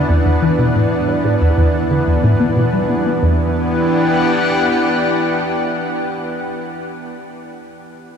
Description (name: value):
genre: ambient, sequencer-driven space music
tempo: 91 BPM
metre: 4/4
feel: straight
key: E minor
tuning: A4 = 439 Hz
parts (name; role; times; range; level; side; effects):
- lush unison pad; sustained chords; 0.0-6.6 s; E3 to F#5; -16 LUFS; equal; chorus
- concert harp; arpeggios; 0.0-5.8 s; D4 to E5; -34 LUFS; equal; none
- resonant blip pluck; riff; 0.0-3.5 s; E2 to B3; -16 LUFS; equal; phaser, cassette tape, tape echo
room: wet huge ambient reverb, RT60 7.0 s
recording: none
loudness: -14 LUFS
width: side -7 dB against mid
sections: 0.0-3.2 A section; 3.2-5.9 B section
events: none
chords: 0.0 Em7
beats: | 0.59 1.25 1.91 2.57 | 3.23 3.88 4.54 5.20